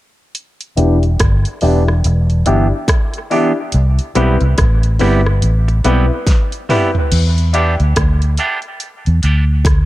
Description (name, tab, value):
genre	dub reggae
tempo	71 BPM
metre	4/4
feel	swing 60% on 16ths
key	E minor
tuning	A4 = 440 Hz
part	pop drum kit	drums	0.3-9.9 s	crash cymbal, hi-hat, kick drum, rim click, snare drum, toms	-17 LUFS	equal	none
part	semi-hollow electric guitar	accompaniment	0.8-9.4 s	E3 to G4	-20 LUFS	right 4 dB	high-pass filter, low-pass filter, dub echo
part	warm upright piano	stabs	0.8-9.5 s	C4 to B4	-20 LUFS	left 5 dB	high-pass filter, low-pass filter, dub echo
part	vintage muted fingered electric bass	bass	0.8-9.9 s	E1 to E2	-13 LUFS	equal	none
room	light reverb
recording	none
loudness	-12 LUFS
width	side -16 dB against mid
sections	0.4-7.1 A section; 7.1-9.9 B section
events	filter sweep 0.4-9.9; drum fill 6.3-7.1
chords	0.4 Em7; 3.7 Cmaj7; 7.1 Em7